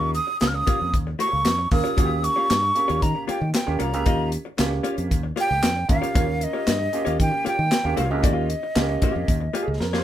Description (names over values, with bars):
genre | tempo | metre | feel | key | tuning
funk | 115 BPM | 4/4 | straight | unclear | A4 = 443 Hz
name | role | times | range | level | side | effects
breathy hollow jazz flute | melody | 0.0-9.8 s | Eb5 to F6 | -24 LUFS | right 1 dB | none
vintage hollow-body jazz guitar | accompaniment | 0.0-10.0 s | Bb3 to Eb5 | -30 LUFS | left 4 dB | none
bright upright piano | stabs | 0.0-10.0 s | Bb3 to C5 | -28 LUFS | right 6 dB | none
fingered electric bass | bass | 0.0-10.0 s | C2 to Eb3 | -26 LUFS | equal | none
tight funk drum kit | drums | 0.1-10.0 s | handclaps, hi-hat, kick drum, snare drum | -23 LUFS | equal | none
room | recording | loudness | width
light reverb | band playing live in one room | -20 LUFS | side -12 dB against mid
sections
0.0-10.0 A section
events
upright piano fill 9.3-10.0; drum fill 9.8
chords
0.0 Eb9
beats
0.41 0.93 1.46 | 1.98 2.50 3.02 3.54 | 4.07 4.59 5.11 5.63 | 6.15 6.67 7.20 7.72 | 8.24 8.76 9.28 9.80